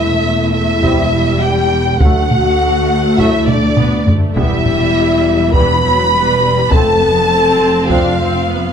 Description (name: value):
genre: cinematic, epic orchestral film score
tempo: 102 BPM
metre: 4/4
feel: straight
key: E minor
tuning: A4 = 440 Hz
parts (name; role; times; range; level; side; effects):
- dark symphonic violin section; melody; 0.0-8.7 s; D5 to B5; -20 LUFS; equal; none
- warm symphonic violin section; second line; 0.0-8.7 s; D5 to B5; -18 LUFS; equal; none
- warm symphonic viola section; accompaniment; 0.0-8.7 s; E3 to D4; -21 LUFS; equal; none
- mellow French horn section; sustained chords; 0.0-8.7 s; D4 to B4; -16 LUFS; left 4 dB; none
- warm symphonic cello section; bass; 0.0-8.7 s; D2 to F2; -20 LUFS; equal; none
- warm symphonic double bass section; bass; 0.0-8.7 s; E1 to D2; -20 LUFS; right 4 dB; none
- bright trombone section; sustained chords; 0.8-8.1 s; F3 to C4; -24 LUFS; right 6 dB; none
- taiko ensemble; drums; 0.8-8.4 s; none; -16 LUFS; equal; none
room: moderate recital hall reverb, RT60 1.6 s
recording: close, detailed microphones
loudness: -10 LUFS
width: side -7 dB against mid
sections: 0.0-8.7 A section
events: drum fill 3.5-4.4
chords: 0.0 C/E (rootless); 2.0 D; 4.4 Em; 6.7 F